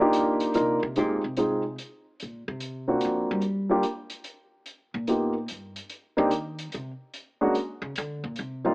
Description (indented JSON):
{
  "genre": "jazz piano trio",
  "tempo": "146 BPM",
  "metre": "3/4",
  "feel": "swing 66% on 8ths",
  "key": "C minor",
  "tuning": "A4 = 440 Hz",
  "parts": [
    { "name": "dark concert grand piano", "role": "melody", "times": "0.0-8.7 s", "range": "G3 to Bb4", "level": "-23 LUFS", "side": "equal", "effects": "none" },
    { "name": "hi-hat", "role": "drums", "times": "0.1-8.5 s", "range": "none", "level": "-40 LUFS", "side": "equal", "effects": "none" },
    { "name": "upright bass", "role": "bass", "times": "0.6-8.7 s", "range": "Eb2 to G3", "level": "-33 LUFS", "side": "equal", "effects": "none" }
  ],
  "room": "moderate studio reverb, RT60 0.6 s",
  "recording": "AM radio sound",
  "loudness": "-25 LUFS",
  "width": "side -26 dB against mid",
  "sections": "1.0-8.7 A section",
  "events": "upright bass solo 0.0-8.7",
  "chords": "0.0 Cm11; 1.0 Fm7; 2.2 D7alt; 3.4 N.C.; 4.7 Gm; 5.9 Cm; 7.1 Bb(#9)"
}